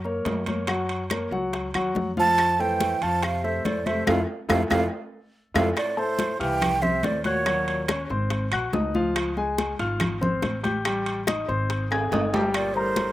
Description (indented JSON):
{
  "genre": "Afro-Cuban jazz",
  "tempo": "142 BPM",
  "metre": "4/4",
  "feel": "straight",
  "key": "unclear",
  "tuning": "A4 = 440 Hz",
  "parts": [
    { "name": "warm grand piano", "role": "accompaniment", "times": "0.0-13.1 s", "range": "F3 to Ab6", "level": "-27 LUFS", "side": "left 2 dB", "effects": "none" },
    { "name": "upright bass", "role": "bass", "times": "0.0-13.1 s", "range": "G1 to Gb2", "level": "-31 LUFS", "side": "equal", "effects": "none" },
    { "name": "congas", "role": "percussion", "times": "0.0-13.1 s", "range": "none", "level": "-30 LUFS", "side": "left 2 dB", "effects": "none" },
    { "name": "bongos", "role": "percussion", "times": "0.1-13.1 s", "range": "none", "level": "-32 LUFS", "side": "left 6 dB", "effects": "none" },
    { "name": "timbales", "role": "percussion", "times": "0.3-13.1 s", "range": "none", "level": "-32 LUFS", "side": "right 4 dB", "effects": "none" },
    { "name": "claves", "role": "percussion", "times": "0.7-12.8 s", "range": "none", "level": "-30 LUFS", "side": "left 4 dB", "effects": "none" },
    { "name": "breathy mellow silver concert flute", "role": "melody", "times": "2.2-8.1, 12.5-13.1 s", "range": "C5 to A5", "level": "-24 LUFS", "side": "right 3 dB", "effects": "slapback echo" },
    { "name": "warm trombone", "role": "second line", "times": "2.2-8.1, 12.6-13.1 s", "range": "A2 to F3", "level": "-34 LUFS", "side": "left 2 dB", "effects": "slapback echo" }
  ],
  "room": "little or no reverb",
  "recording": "recorded outdoors, with no room sound",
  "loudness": "-22 LUFS",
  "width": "side -14 dB against mid",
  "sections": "0.0-5.8 A section; 5.8-13.1 B section",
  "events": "band accent 4.1-5.8; drum fill 5.3-5.8, 11.9-12.5",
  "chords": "0.0 Gb; 2.4 Fmaj7; 5.8 Fmaj9; 7.5 Ebm7; 8.3 Ab9; 9.2 Dbmaj7; 10.8 Am7b5; 11.7 Ab; 12.5 Gmadd9"
}